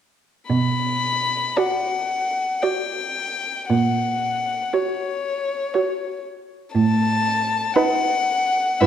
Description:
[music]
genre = classical, slow romantic movement for string quartet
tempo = 54-60 BPM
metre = 3/4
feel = rubato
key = B minor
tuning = A4 = 443 Hz
[part]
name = warm violin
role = melody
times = 0.5-8.9 s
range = C#5 to B5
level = -22 LUFS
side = left 4 dB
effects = none
[part]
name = warm cello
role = bass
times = 0.5-8.9 s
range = G2 to B2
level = -21 LUFS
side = right 3 dB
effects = none
[part]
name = dark violin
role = second line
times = 1.6-8.9 s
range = B4 to D5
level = -25 LUFS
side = right 1 dB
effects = none
[part]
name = dark viola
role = accompaniment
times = 1.6-8.9 s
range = D#4 to F#4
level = -24 LUFS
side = right 4 dB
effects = none
[sound]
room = moderate concert hall reverb, RT60 1.9 s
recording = dark, warm production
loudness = -20 LUFS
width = side -9 dB against mid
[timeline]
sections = 0.5-8.9 A section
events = none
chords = 0.5 Bm; 3.7 F#/A#; 6.8 B7/A

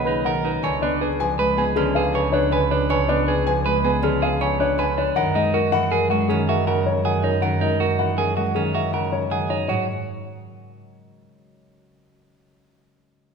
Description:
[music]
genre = classical, minimalist pattern music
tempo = 159 BPM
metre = 6/4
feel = straight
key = G# minor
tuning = A4 = 443 Hz
[part]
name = dark baby grand piano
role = melody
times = 0.0-9.9 s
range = G#4 to G#5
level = -24 LUFS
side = left 7 dB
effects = none
[part]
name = Celtic harp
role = accompaniment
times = 0.0-12.0 s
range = C#3 to B3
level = -26 LUFS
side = left 2 dB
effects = none
[part]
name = clean electric guitar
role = arpeggios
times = 0.0-9.9 s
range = C#4 to C#5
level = -24 LUFS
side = right 7 dB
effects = none
[part]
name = warm double bass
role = bass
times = 0.0-9.9 s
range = B1 to G#2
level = -26 LUFS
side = right 2 dB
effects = none
[part]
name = dark French horn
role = second line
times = 0.1-9.4 s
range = G#4 to B4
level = -28 LUFS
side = right 4 dB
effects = none
[sound]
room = wet scoring stage reverb, RT60 2.0 s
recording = minimal, uncompressed stereo recording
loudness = -18 LUFS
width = side -5 dB against mid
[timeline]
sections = 0.0-9.7 A section; 9.7-12.0 B section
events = none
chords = 0.0 B69; 0.6 C#7b9; 5.2 F#9; 9.7 G#7(no3)

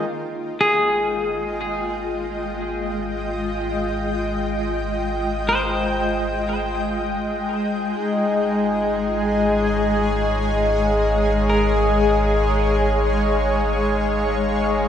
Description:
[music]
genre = ambient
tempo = free time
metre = none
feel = none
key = unclear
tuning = A4 = 440 Hz
[part]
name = shimmering ambient pad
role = sustained chords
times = 0.0-14.9 s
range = Ab3 to G5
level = -22 LUFS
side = left 1 dB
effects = chorus, built-in reverb
[part]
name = deep rumbling drone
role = bass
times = 1.0-14.9 s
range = Ab1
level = -26 LUFS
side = equal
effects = built-in reverb, phaser
[part]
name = pedal harmonium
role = drone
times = 0.0-0.1, 8.0-14.9 s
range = Ab3 to Eb4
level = -23 LUFS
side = left 1 dB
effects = none
[part]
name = clean electric guitar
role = arpeggios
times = 0.6-12.9 s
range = Ab4 to C5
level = -24 LUFS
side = left 1 dB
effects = spring reverb, tape echo
[sound]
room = wet concert hall reverb, RT60 2.1 s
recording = nothing above 10.7 kHz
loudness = -19 LUFS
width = side -9 dB against mid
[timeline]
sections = 0.0-14.9 A section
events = fade-in on ambient pad 0.0-14.9; fade-in on synth drone 0.0-14.9; fade-out on clean electric guitar 0.0-14.9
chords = 0.0 Fm7/Ab; 7.9 Bbm7/Ab

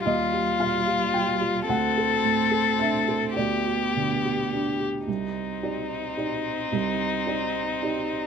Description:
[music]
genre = neoclassical piano and strings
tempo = 109 BPM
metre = 3/4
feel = rubato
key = C minor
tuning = A4 = 440 Hz
[part]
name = felt-muted upright piano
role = accompaniment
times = 0.0-8.3 s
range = C2 to G5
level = -27 LUFS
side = right 3 dB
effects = none
[part]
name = warm violin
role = melody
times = 0.1-8.3 s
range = Eb4 to A4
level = -26 LUFS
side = left 6 dB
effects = none
[part]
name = clear cello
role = second line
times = 0.1-8.3 s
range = G3 to C4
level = -32 LUFS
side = right 6 dB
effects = none
[sound]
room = light reverb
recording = close, detailed microphones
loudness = -23 LUFS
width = side -7 dB against mid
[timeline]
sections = 0.0-5.1 A section; 5.1-8.3 B section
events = none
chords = 0.1 Ebadd9; 1.7 D7; 3.4 G/D; 5.1 Cmadd9

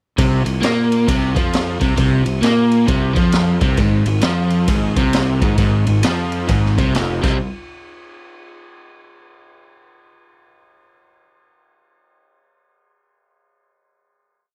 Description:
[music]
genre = blues rock power trio and southern rock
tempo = 133 BPM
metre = 4/4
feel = swing 63% on 8ths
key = unclear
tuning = A4 = 440 Hz
[part]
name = crunchy overdriven guitar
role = riff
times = 0.2-7.4 s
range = F2 to C4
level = -19 LUFS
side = equal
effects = none
[part]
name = fuzz fingered electric bass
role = bass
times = 0.2-7.4 s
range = F1 to Bb2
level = -24 LUFS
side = equal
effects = overdrive
[part]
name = raw garage drum kit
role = drums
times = 0.2-7.3 s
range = crash cymbal, kick drum, ride cymbal, snare drum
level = -23 LUFS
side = equal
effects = none
[sound]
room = small room ambience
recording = dry, close 1970s-style studio recording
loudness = -17 LUFS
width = mono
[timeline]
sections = 0.2-7.4 riff; 7.4-9.2 final hit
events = none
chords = 0.2 C7sus4; 3.8 Fm; 7.2 C5; 7.4 N.C.

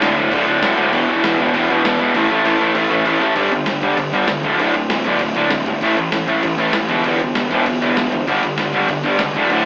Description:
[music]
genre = punk rock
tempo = 196 BPM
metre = 4/4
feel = straight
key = unclear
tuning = A4 = 440 Hz
[part]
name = distorted electric guitar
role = riff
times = 0.0-9.7 s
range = D2 to A3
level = -16 LUFS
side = equal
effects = distortion
[part]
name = overdriven semi-hollow guitar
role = riff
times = 0.0-9.6 s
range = D2 to A3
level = -23 LUFS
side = equal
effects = none
[part]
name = fuzz picked electric bass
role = bass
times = 0.0-9.6 s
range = D1 to D2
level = -22 LUFS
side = equal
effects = overdrive
[part]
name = boom bap sampler-style drum kit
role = drums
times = 0.0-9.6 s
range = crash cymbal, kick drum, snare drum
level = -24 LUFS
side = equal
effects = none
[sound]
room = light reverb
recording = rough rehearsal-room recording, AM radio sound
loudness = -14 LUFS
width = side -30 dB against mid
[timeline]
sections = 0.0-3.4 A section; 3.4-9.7 B section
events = kick and snare drop out 2.1-3.4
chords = 0.0 D5; 0.9 E5; 2.1 A5; 3.4 G5; 4.4 D5; 5.8 A5; 6.9 Em; 8.3 G5

